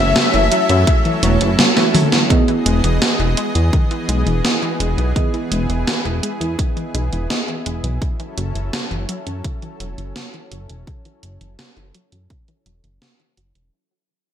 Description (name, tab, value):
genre	synthwave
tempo	84 BPM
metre	4/4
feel	straight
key	unclear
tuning	A4 = 441 Hz
part	mellow synth brass	melody	0.0-1.9 s	E5	-20 LUFS	left 5 dB	chorus, digital delay
part	string machine, violins	second line	0.0-1.9 s	E5	-26 LUFS	equal	ensemble chorus, digital delay
part	lush unison pad	sustained chords	0.0-13.7 s	E3 to D#5	-26 LUFS	right 1 dB	chorus, sidechain pumping
part	wide unison pluck	arpeggios	0.0-13.7 s	C#3 to G#3	-26 LUFS	left 2 dB	digital delay
part	mellow FM electric piano	stabs	0.0-8.0 s	A3 to E5	-24 LUFS	right 4 dB	chorus, phaser, digital delay
part	chorused synth bass	bass	0.0-13.7 s	E1 to F#2	-19 LUFS	equal	sidechain pumping
part	gated 80s digital drum machine	drums	0.2-13.7 s	hi-hat, snare drum, toms	-18 LUFS	equal	gated reverb, gated reverb snare
part	electronic kick drum	drums	0.9-12.4 s	none	-18 LUFS	equal	none
room	light reverb, digital ambience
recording	none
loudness	-15 LUFS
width	side -9 dB against mid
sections	0.0-2.3 A section; 2.3-13.7 B section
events	drum fill 1.6-2.3; fade-out 2.3-13.7; filter sweep on analog synth bass 2.3-13.7; filter sweep on analog synth pad 2.3-13.7; filter sweep on synth arpeggio sound 2.3-13.7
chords	0.0 F#m7; 2.3 Emaj7; 8.0 F#m7